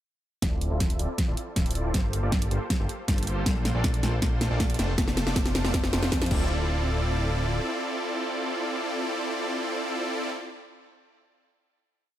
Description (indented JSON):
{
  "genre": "future bass",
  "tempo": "158 BPM",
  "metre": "4/4",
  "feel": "half-time",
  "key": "D minor",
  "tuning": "A4 = 441 Hz",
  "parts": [
    { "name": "supersaw chords", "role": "riff", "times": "0.4-10.3 s", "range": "A3 to E5", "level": "-30 LUFS", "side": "equal", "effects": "sidechain pumping, low-pass filter, digital delay" },
    { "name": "fat analog bass", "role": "bass", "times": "0.4-7.6 s", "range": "D1 to F2", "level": "-28 LUFS", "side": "equal", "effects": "sidechain pumping" },
    { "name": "electronic kick drum", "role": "drums", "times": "0.4-6.4 s", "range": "none", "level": "-28 LUFS", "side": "equal", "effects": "none" },
    { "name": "pop drum kit", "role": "drums", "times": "0.4-6.4 s", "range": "crash cymbal, hi-hat, snare drum", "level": "-29 LUFS", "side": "equal", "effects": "none" }
  ],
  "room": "light reverb",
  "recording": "none",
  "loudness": "-24 LUFS",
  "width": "side -12 dB against mid",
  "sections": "0.4-6.5 build; 6.5-9.5 final hit",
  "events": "build-up 0.4-6.5; drum fill 0.4-6.5; filter sweep on supersaw synth 0.4-6.5",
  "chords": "0.4 Dm9; 1.9 Gm11; 3.5 Bbmaj9; 4.8 F; 6.3 Dm9"
}